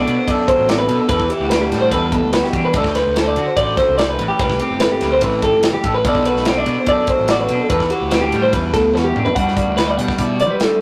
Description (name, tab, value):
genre	math rock and midwest emo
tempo	145 BPM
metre	4/4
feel	straight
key	unclear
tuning	A4 = 440 Hz
part	electric guitar through a small old amp	accompaniment	0.0-10.8 s	G2 to C5	-23 LUFS	equal	none
part	twelve-string electric guitar	arpeggios	0.0-10.8 s	G4 to F#5	-20 LUFS	equal	none
part	fuzz picked electric bass	bass	0.0-10.7 s	G1 to G3	-25 LUFS	equal	overdrive
part	modern studio drum kit	drums	0.1-10.7 s	hi-hat, kick drum, ride cymbal, snare drum, toms	-24 LUFS	equal	none
room	moderate studio reverb, RT60 0.5 s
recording	rough rehearsal-room recording, tube saturation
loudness	-17 LUFS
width	mono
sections	0.0-9.4 A section; 9.4-10.8 B section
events	drum fill 8.9-9.4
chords	0.0 Bm7; 1.1 Em9; 2.7 D7; 4.2 Am9; 6.0 Bm7; 7.7 Em9